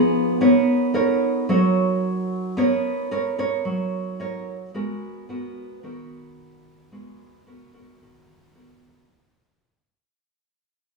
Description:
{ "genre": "bossa nova", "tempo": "111 BPM", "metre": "4/4", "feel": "straight", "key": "unclear", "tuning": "A4 = 440 Hz", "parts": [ { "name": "nylon-string guitar", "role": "solo", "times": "0.0-9.1 s", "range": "Eb3 to C#5", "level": "-20 LUFS", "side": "right 1 dB", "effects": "none" } ], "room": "wet stone room reverb, RT60 1.3 s", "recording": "band playing live in one room, studio reverb", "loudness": "-19 LUFS", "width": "side -2 dB against mid", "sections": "0.0-9.1 A section", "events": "fade-out 0.0-9.1", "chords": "0.4 Bmaj9; 4.7 Abm9", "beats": "| 0.41 0.95 1.49 2.04 | 2.58 3.12 3.66 4.20 | 4.75 5.29 5.83 6.37 | 6.91 7.46 8.00 8.54" }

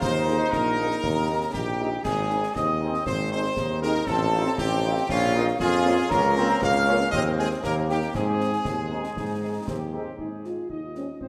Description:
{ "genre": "military-style march for wind band", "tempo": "118 BPM", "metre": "2/4", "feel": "straight", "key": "Ab major", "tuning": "A4 = 443 Hz", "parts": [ { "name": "clear trumpet section", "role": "melody", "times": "0.0-11.3 s", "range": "F4 to F5", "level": "-32 LUFS", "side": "equal", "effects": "none" }, { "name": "mellow hollow small flute group", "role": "second line", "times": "0.0-9.6 s", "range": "F5 to F6", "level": "-32 LUFS", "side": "equal", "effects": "none" }, { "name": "warm trombone section", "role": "sustained chords", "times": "0.0-10.2 s", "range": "Ab3 to F4", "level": "-32 LUFS", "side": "equal", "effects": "none" }, { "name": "clear tuba", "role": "bass", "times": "0.0-11.3 s", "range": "Ab1 to Ab2", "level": "-29 LUFS", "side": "equal", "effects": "none" }, { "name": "concert snare drum, clash cymbals and concert bass drum", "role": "drums", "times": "0.0-11.3 s", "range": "none", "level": "-38 LUFS", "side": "equal", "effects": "none" }, { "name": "dark French horn section", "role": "accompaniment", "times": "0.3-11.0 s", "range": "Ab3 to Ab4", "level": "-35 LUFS", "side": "equal", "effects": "none" }, { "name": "mellow euphonium", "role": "second line", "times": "10.2-11.3 s", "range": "C4 to F4", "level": "-35 LUFS", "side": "equal", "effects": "none" } ], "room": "wet scoring stage reverb, RT60 1.7 s", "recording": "none", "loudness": "-25 LUFS", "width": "mono", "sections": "0.0-10.2 A section; 10.2-11.3 A section", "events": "none", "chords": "0.0 Ebsus4; 1.0 Eb; 2.1 Ab; 4.1 F7/A; 5.1 Bbm; 6.1 Bbm/Db; 7.1 Ab/Eb; 7.6 Eb; 8.1 Ab", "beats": "| 0.02 0.53 | 1.03 1.54 | 2.05 2.56 | 3.07 3.58 | 4.08 4.59 | 5.10 5.61 | 6.12 6.62 | 7.13 7.64 | 8.15 8.66 | 9.17 9.68 | 10.19 10.70 | 11.21" }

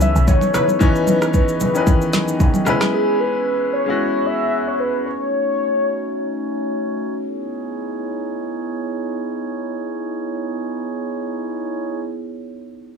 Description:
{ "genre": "amapiano", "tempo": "113 BPM", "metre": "4/4", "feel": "swing 55% on 16ths", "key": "C# minor", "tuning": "A4 = 441 Hz", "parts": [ { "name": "warm velvety synth lead", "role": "melody", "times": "0.0-6.6 s", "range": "G#4 to E5", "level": "-20 LUFS", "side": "left 1 dB", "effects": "chorus, tape echo" }, { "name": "clear grand piano", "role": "accompaniment", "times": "0.0-5.1 s", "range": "D#3 to C#5", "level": "-21 LUFS", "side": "left 4 dB", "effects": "none" }, { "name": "glass harmonica", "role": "sustained chords", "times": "0.0-12.0 s", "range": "A3 to D#5", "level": "-25 LUFS", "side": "right 1 dB", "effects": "none" }, { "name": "deep house drum kit", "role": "drums", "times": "0.0-2.9 s", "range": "kick drum, rim click, shaker, snare drum", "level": "-18 LUFS", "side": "equal", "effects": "none" }, { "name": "congas", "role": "percussion", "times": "0.0-2.9 s", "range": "none", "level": "-23 LUFS", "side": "right 5 dB", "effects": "none" }, { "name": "punchy chord stab", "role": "stabs", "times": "0.5-0.7 s", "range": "D#4 to B4", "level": "-24 LUFS", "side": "equal", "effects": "chorus, tape echo" } ], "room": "small room ambience", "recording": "none", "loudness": "-18 LUFS", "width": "side -6 dB against mid", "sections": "0.0-7.2 A section; 7.2-11.4 B section", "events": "none", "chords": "0.0 C#m9; 2.7 E6; 5.1 D#m7b5; 7.2 C#m9", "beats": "0.28 | 0.81 1.34 1.87 2.40 | 2.93 3.46 4.00 4.53 | 5.06 5.59 6.12 6.65 | 7.18 7.71 8.24 8.77 | 9.30 9.84 10.37 10.90" }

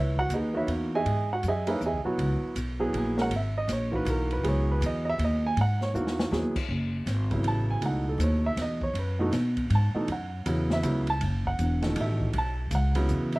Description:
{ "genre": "modal jazz", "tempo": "160 BPM", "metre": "3/4", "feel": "swing 64% on 8ths", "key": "C# dorian, F# dorian from 6.7 s", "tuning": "A4 = 436 Hz", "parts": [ { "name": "warm grand piano", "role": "accompaniment", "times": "0.0-13.4 s", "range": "B2 to A5", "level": "-29 LUFS", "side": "right 1 dB", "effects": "slapback echo" }, { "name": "upright bass", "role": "bass", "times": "0.0-13.4 s", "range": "E1 to B2", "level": "-27 LUFS", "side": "equal", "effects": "none" }, { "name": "open jazz drum kit", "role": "drums", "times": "0.2-13.4 s", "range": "crash cymbal, hi-hat, kick drum, ride cymbal, snare drum", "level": "-37 LUFS", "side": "equal", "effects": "none" } ], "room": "little or no reverb", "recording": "recorded outdoors, with no room sound", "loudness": "-25 LUFS", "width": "side -21 dB against mid", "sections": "0.0-6.7 A section; 6.7-13.4 A section", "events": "drum fill 5.9-6.3", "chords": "0.0 C#m9; 6.7 F#m11; 11.2 Bsus2", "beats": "0.30 0.68 | 1.05 1.43 1.81 | 2.19 2.56 2.94 | 3.31 3.69 4.07 | 4.44 4.82 5.19 | 5.57 5.95 6.32 | 6.70 7.07 7.45 | 7.83 8.20 8.58 | 8.96 9.33 9.71 | 10.09 10.46 10.84 | 11.21 11.59 11.97 | 12.34 12.72 13.09" }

